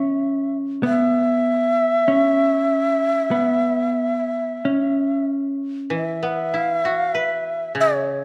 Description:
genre	japanese traditional, Japanese chamber music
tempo	44-51 BPM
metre	4/4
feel	rubato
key	unclear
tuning	A4 = 440 Hz
part	breathy long shakuhachi	melody	0.0-8.2 s	C#5 to E5	-23 LUFS	equal	none
part	vintage hollow-body jazz guitar	second line	0.0-5.9 s	B3 to C#4	-23 LUFS	equal	none
part	koto	accompaniment	0.0-8.2 s	C#3 to B4	-28 LUFS	equal	none
room	moderate recital hall reverb, RT60 1.5 s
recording	dark, warm production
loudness	-21 LUFS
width	mono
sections	0.0-5.9 A section; 5.9-8.2 B section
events	none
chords	none

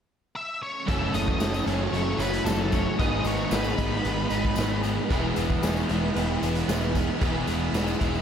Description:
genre	rock, shoegaze and dream pop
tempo	114 BPM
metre	4/4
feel	straight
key	unclear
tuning	A4 = 438 Hz
part	octave-fuzz lead guitar	melody	0.4-4.8 s	A4 to E5	-33 LUFS	left 1 dB	distortion, diffuse ambient delay
part	phased string machine	sustained chords	0.9-8.2 s	E4 to E6	-36 LUFS	left 1 dB	ensemble chorus, phaser
part	twelve-string electric guitar	arpeggios	0.9-8.2 s	E3 to D#4	-36 LUFS	right 7 dB	none
part	crunchy overdriven guitar	riff	0.9-8.2 s	F#2 to A4	-32 LUFS	equal	lush chorus
part	overdriven electric guitar	riff	0.9-8.2 s	F#2 to E4	-31 LUFS	right 8 dB	reverse reverb
part	overdriven semi-hollow guitar	riff	0.9-8.2 s	F#2 to A4	-31 LUFS	left 8 dB	lush chorus
part	fuzz picked electric bass	bass	0.9-8.2 s	E1 to G#1	-30 LUFS	equal	overdrive
part	raw garage drum kit	drums	0.9-8.1 s	hi-hat, kick drum, snare drum	-30 LUFS	equal	none
part	tambourine	percussion	1.1-8.2 s	none	-44 LUFS	left 12 dB	none
room	moderate plate reverb, RT60 1.4 s, studio reverb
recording	dreamy mix soaked in reverb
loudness	-23 LUFS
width	side -8 dB against mid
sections	0.9-8.2 A section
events	none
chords	0.0 N.C.; 0.9 F#m7; 3.0 G#m; 5.1 E

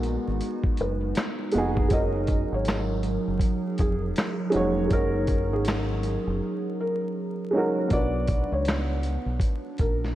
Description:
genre	lo-fi hip hop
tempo	80 BPM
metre	4/4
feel	swing 60% on 16ths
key	F# major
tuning	A4 = 436 Hz
part	felt-muted upright piano	melody	0.0-10.0 s	G#4 to D#5	-33 LUFS	equal	low-pass filter, analog delay
part	dark upright piano	accompaniment	0.0-10.2 s	G#3 to C#5	-29 LUFS	right 2 dB	cassette tape, low-pass filter
part	warbly tape-like pad	sustained chords	0.0-10.1 s	F#3 to A#4	-31 LUFS	right 1 dB	chorus, built-in reverb, low-pass filter
part	deep dub fingered electric bass	bass	0.0-10.1 s	E#1 to C#2	-29 LUFS	equal	none
part	dusty soul sampler-style drum kit	drums	0.0-10.1 s	handclaps, hi-hat, kick drum, snare drum	-27 LUFS	equal	none
room	moderate plate reverb, RT60 3.2 s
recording	dreamy mix soaked in reverb, vinyl crackle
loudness	-23 LUFS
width	side -14 dB against mid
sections	0.0-7.9 A section; 7.9-10.2 B section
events	drums muted 6.4-7.9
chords	0.0 G#m7; 1.9 F#69; 7.9 Bmadd9

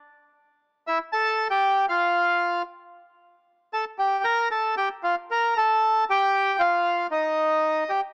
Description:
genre	tango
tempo	116 BPM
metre	4/4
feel	rubato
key	unclear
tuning	A4 = 440 Hz
part	bandoneon	solo	0.9-8.0 s	Eb4 to Bb5	-20 LUFS	equal	cassette tape
room	light reverb, studio reverb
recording	home recording on cassette, small speaker sound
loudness	-20 LUFS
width	side -38 dB against mid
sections	0.0-8.1 A section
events	none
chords	0.1 Emadd11; 2.1 N.C.; 3.2 Gsus2; 4.2 Bb5; 6.3 Ebadd9

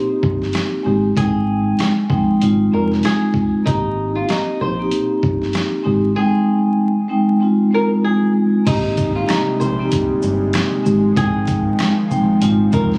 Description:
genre	hip hop, boom-bap hip-hop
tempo	96 BPM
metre	4/4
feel	swing 59% on 16ths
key	Ab major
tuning	A4 = 439 Hz
part	flamenco guitar	melody	0.0-12.9 s	Eb4 to C5	-27 LUFS	equal	high-pass filter, low-pass filter, analog delay
part	vibraphone with soft mallets	accompaniment	0.0-13.0 s	Ab3 to G5	-19 LUFS	equal	cassette tape, high-pass filter, low-pass filter
part	deep dub fingered electric bass	bass	0.2-13.0 s	F1 to Bb1	-24 LUFS	equal	none
part	boom bap sampler-style drum kit	drums	0.2-13.0 s	crash cymbal, hi-hat, kick drum, rim click, shaker, snare drum	-25 LUFS	equal	vintage 12-bit sampler grit
part	warm analog pad	sustained chords	9.3-13.0 s	C3 to C4	-28 LUFS	equal	chorus, high-pass filter, low-pass filter
part	finger snap	percussion	9.3-12.0 s	none	-34 LUFS	equal	none
room	light reverb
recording	recorded on a phone in the room, club reverb, vinyl crackle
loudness	-17 LUFS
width	mono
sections	0.0-8.7 A section; 8.7-13.0 B section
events	none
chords	0.0 Abmaj9; 2.4 Fm7; 3.7 Abmaj9; 5.9 Abmaj7; 7.4 Ab6; 8.7 Abmaj9; 10.9 Fm9/Ab; 12.4 Dbmaj7

